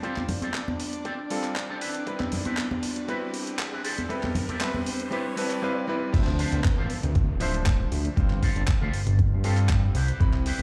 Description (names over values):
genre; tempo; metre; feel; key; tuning
nu-disco, nu disco; 118 BPM; 4/4; straight; D dorian; A4 = 440 Hz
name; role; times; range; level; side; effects
bright electric grand piano; accompaniment; 0.0-10.6 s; F3 to B5; -35 LUFS; equal; sidechain pumping, tape echo
dark chamber string section; sustained chords; 0.0-5.6 s; D4 to D5; -41 LUFS; equal; sidechain pumping
electric guitar with an envelope filter; riff; 0.0-10.6 s; C4 to A5; -38 LUFS; equal; lush chorus, low-pass filter, tape echo
dusty soul sampler-style drum kit; drums; 0.0-10.6 s; crash cymbal, handclaps, hi-hat; -37 LUFS; equal; overdrive, high-pass filter on hats, high-pass filter on snare, high-pass filter on cymbals
electronic kick drum; drums; 0.0-10.3 s; none; -26 LUFS; equal; overdrive, high-pass filter on kick
riser and downlifter; sound effects; 0.8-10.2 s; none; -42 LUFS; equal; none
congas; percussion; 0.2-4.8 s; none; -34 LUFS; equal; none
fat analog bass; bass; 6.1-10.6 s; D1 to G2; -27 LUFS; equal; none
room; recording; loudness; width
light reverb, digital ambience; played on a big sound system in a bare room, large studio reverb; -26 LUFS; mono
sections
0.0-6.1 A section; 6.1-10.6 B section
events
build-up 0.0-6.1; clean electric guitar fill 5.1-6.1; drop 6.1-10.6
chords
0.0 G9sus4; 1.8 Cmaj7; 3.9 Fmaj9; 6.1 Dm9; 8.2 G9sus4; 10.0 Cmaj7